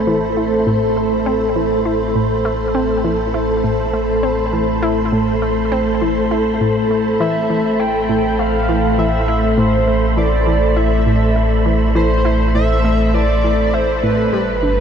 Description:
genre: ambient, sequencer-driven space music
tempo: 101 BPM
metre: 4/4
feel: straight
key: A minor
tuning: A4 = 440 Hz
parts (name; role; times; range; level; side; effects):
- string machine, full ensemble; sustained chords; 0.0-14.8 s; G3 to C5; -17 LUFS; equal; ensemble chorus, shimmer reverb
- analog pluck; riff; 0.0-14.8 s; A2 to E4; -21 LUFS; equal; chorus, cassette tape, shimmer reverb, ping-pong delay
- round analog bass; bass; 0.0-14.8 s; G1 to A1; -21 LUFS; equal; none
- wind-like tuned noise texture; texture; 0.0-14.8 s; B5; -29 LUFS; right 4 dB; built-in reverb, shimmer reverb
- pulse-width lead; melody; 7.2-14.8 s; B4 to G5; -20 LUFS; right 1 dB; chorus, shimmer reverb, ping-pong delay
room: wet huge ambient reverb, RT60 7.9 s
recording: dark, warm production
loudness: -14 LUFS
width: side -7 dB against mid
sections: 0.0-14.8 A section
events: fade-in on analog synth bass 0.0-14.8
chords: 0.0 Amadd9

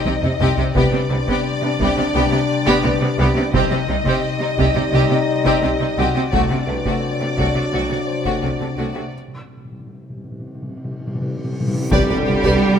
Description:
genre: cinematic, suspense film score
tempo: 86 BPM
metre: 4/4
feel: straight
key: C hungarian minor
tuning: A4 = 441 Hz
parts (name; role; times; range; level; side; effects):
- rich studio violin section; melody; 0.0-12.8 s; G4 to Eb5; -26 LUFS; left 3 dB; none
- rich studio violin section; second line; 0.0-12.6 s; D4 to D5; -25 LUFS; left 3 dB; none
- rich studio viola section; accompaniment; 0.0-12.6 s; A3 to G4; -25 LUFS; right 3 dB; none
- mellow French horn section; sustained chords; 0.0-12.8 s; D3 to Eb4; -24 LUFS; left 3 dB; none
- concert harp; riff; 0.0-12.8 s; C3 to C4; -26 LUFS; left 6 dB; none
- rich studio cello section; bass; 0.1-12.8 s; C3 to G3; -23 LUFS; right 3 dB; none
- rich studio double bass section; bass; 0.1-12.5 s; C2; -23 LUFS; right 3 dB; none
- solo taiko drums; drums; 0.1-12.8 s; none; -25 LUFS; right 1 dB; none
- dark baby grand piano; texture; 0.7-9.2 s; F#4 to F#5; -31 LUFS; left 1 dB; none
- timpani; percussion; 3.5-12.8 s; C3; -26 LUFS; left 1 dB; none
- reverse cymbal and impact; sound effects; 11.7-12.8 s; none; -29 LUFS; right 1 dB; none
- tam-tam; percussion; 11.9-12.8 s; none; -29 LUFS; left 2 dB; none
room: moderate concert hall reverb, RT60 2.0 s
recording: close, detailed microphones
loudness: -16 LUFS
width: side -8 dB against mid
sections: 0.0-11.9 A section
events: drum fill 0.1-0.8, 11.2-11.9; break 9.1-11.9; timpani fill 9.1-11.9; reverse cymbal 11.7; band accent 11.9-12.6; impact 11.9-12.8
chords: 0.0 Cm; 0.8 G/C; 3.5 Cm; 6.3 D/C; 9.1 N.C.; 11.9 G/C

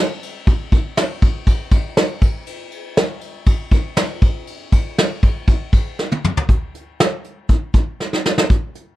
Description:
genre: indie pop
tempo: 120 BPM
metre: 4/4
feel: straight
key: none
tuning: none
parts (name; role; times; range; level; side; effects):
- soft brush drum kit; drums; 0.2-8.9 s; hi-hat, kick drum, ride cymbal, snare drum, toms; -16 LUFS; equal; none
room: little or no reverb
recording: none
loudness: -16 LUFS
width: side -16 dB against mid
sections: 0.0-6.5 A section; 6.5-8.5 B section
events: drum fill 6.0-6.5, 8.0-8.5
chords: none

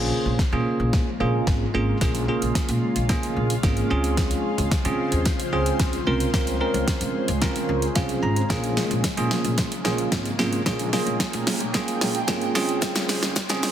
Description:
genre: dance-pop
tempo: 111 BPM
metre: 4/4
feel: straight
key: Bb dorian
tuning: A4 = 441 Hz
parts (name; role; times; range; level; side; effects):
- bell-like tine electric piano; accompaniment; 0.0-13.7 s; Bb3 to Bb5; -25 LUFS; right 2 dB; phaser, sidechain pumping
- ethereal airy pad; sustained chords; 0.0-13.7 s; Db3 to G5; -30 LUFS; left 1 dB; ensemble chorus, built-in reverb, phaser, sidechain pumping
- upright bass; bass; 0.0-13.6 s; Ab1 to Db3; -27 LUFS; equal; sidechain pumping
- smooth R&B drum kit; drums; 0.4-13.7 s; hi-hat, kick drum, shaker, snare drum; -25 LUFS; equal; soft clipping on snare
room: light reverb, digital ambience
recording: dense, heavily limited modern master, high-pass filter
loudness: -21 LUFS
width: side -10 dB against mid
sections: 0.0-13.7 A section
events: build-up 0.0-13.7; drum fill 0.0-13.7; filter sweep 0.0-13.7; tine electric piano fill 7.7-8.5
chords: 0.0 Bbm7; 3.9 Dbmaj7; 8.5 Bbm7; 12.6 Dbmaj7

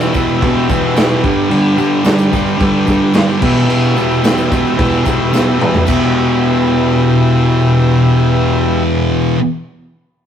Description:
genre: garage rock duo or trio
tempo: 110 BPM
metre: 4/4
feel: straight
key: E minor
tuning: A4 = 440 Hz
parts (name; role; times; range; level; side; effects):
- overdriven combo organ; sustained chords; 0.0-8.8 s; G4 to B5; -22 LUFS; right 1 dB; none
- thick fuzz guitar; riff; 0.0-9.4 s; E2 to G3; -12 LUFS; equal; distortion
- tambourine; percussion; 0.0-6.1 s; none; -37 LUFS; left 4 dB; none
- raw garage drum kit; drums; 0.2-6.0 s; crash cymbal, kick drum, snare drum, toms; -18 LUFS; equal; none
room: moderate stone room reverb, RT60 1.0 s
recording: rough rehearsal-room recording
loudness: -10 LUFS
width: side -9 dB against mid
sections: 0.0-5.9 A section; 5.9-8.1 B section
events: transistor combo organ fill 0.0-1.5; drum fill 5.3-5.9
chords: 0.0 Em; 1.2 G; 3.4 Em

